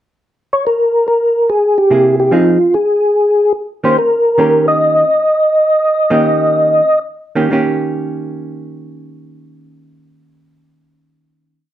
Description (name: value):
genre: jazz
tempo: 123-145 BPM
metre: 4/4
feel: swing 67% on 8ths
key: Eb mixolydian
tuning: A4 = 440 Hz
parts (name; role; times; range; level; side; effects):
- percussive tonewheel organ; melody; 0.5-7.0 s; F4 to Eb5; -11 LUFS; equal; slow rotary speaker, chorus vibrato
- hollow-body jazz guitar; accompaniment; 1.9-11.7 s; C3 to Ab4; -16 LUFS; right 2 dB; none
room: moderate club reverb, RT60 0.6 s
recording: dark, warm production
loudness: -11 LUFS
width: side -12 dB against mid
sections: 0.0-0.7 pickup bar; 0.7-7.5 A section; 7.5-11.4 final chord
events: slowing down 4.0-7.5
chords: 0.0 N.C.; 1.5 C7b13; 2.3 Fm7; 3.1 Eb7